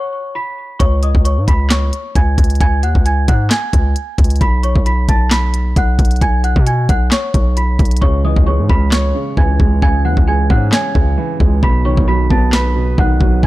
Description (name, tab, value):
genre	hip hop, trap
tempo	133 BPM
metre	4/4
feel	half-time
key	C# minor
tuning	A4 = 440 Hz
part	worn celesta	melody	0.0-13.5 s	C#5 to B6	-21 LUFS	equal	low-pass filter
part	distorted 808-style bass	bass	0.8-13.5 s	B1 to B2	-14 LUFS	equal	distortion
part	trap drum kit	drums	0.8-13.5 s	handclaps, hi-hat, kick drum, snare drum	-14 LUFS	equal	none
part	felt-muted upright piano	accompaniment	8.0-13.5 s	B2 to C#5	-19 LUFS	right 3 dB	low-pass filter
room	small room reverb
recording	dark, warm production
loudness	-12 LUFS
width	side -17 dB against mid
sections	0.0-13.5 A section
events	break 0.0-0.8; hi-hats muted 8.0-13.5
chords	0.0 B5; 0.8 C#5; 4.4 B5; 8.0 C#m; 11.6 B